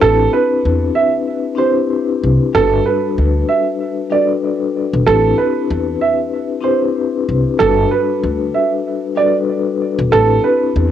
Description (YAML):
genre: hip hop, boom-bap hip-hop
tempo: 95 BPM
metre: 4/4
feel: swing 56% on 16ths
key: G major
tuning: A4 = 440 Hz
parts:
  - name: dark upright piano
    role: melody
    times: 0.0-10.7 s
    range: A4 to E5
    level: -16 LUFS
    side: right 6 dB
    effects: cassette tape, tape echo
  - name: vibraphone with soft mallets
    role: accompaniment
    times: 0.0-10.9 s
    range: G3 to B4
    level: -18 LUFS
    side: left 7 dB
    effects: cassette tape
  - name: upright bass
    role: bass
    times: 0.0-10.9 s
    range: E1 to E2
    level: -17 LUFS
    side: equal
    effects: none
room: light reverb, small room ambience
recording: home recording on cassette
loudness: -13 LUFS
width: side -10 dB against mid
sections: 0.0-7.6 A section; 7.6-10.9 A section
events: none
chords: 0.0 Am11 (rootless); 2.5 Gmaj9; 5.1 Am11 (rootless); 7.6 Gmaj9; 10.1 Am11